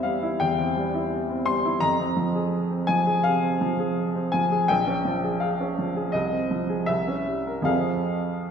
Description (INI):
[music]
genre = classical, romantic character piece for solo piano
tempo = 75-86 BPM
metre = 4/4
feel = rubato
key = F minor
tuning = A4 = 441 Hz
[part]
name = clear upright piano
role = solo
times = 0.0-8.5 s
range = Bb1 to C6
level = -22 LUFS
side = equal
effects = none
[sound]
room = wet scoring stage reverb, RT60 1.6 s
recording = minimal, uncompressed stereo recording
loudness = -22 LUFS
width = side -7 dB against mid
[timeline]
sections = 0.0-8.5 A section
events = none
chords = 0.0 C/E; 1.8 Fm; 4.7 Bbm7; 6.1 Fm/C; 6.9 C7b9; 7.7 Fm